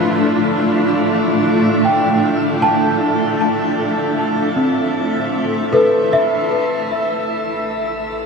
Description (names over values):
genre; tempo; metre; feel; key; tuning
ambient; 77 BPM; 4/4; straight; unclear; A4 = 440 Hz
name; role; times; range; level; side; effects
granular cloud pad; sustained chords; 0.0-8.3 s; A3 to E5; -16 LUFS; equal; built-in reverb
worn celesta; arpeggios; 0.0-8.3 s; C4 to A5; -19 LUFS; equal; ping-pong delay
analog drone; drone; 0.0-7.0 s; A3; -29 LUFS; left 2 dB; none
round analog bass; bass; 6.9-8.3 s; A1; -46 LUFS; equal; none
room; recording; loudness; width
wet shimmer reverb, RT60 8.8 s; none; -14 LUFS; side -4 dB against mid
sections
0.0-6.9 A section; 6.9-8.3 B section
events
none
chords
0.0 Dmadd9/A; 6.9 A7sus2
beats
| 0.68 1.45 2.23 3.01 | 3.79 4.57 5.35 6.13 | 6.91 7.69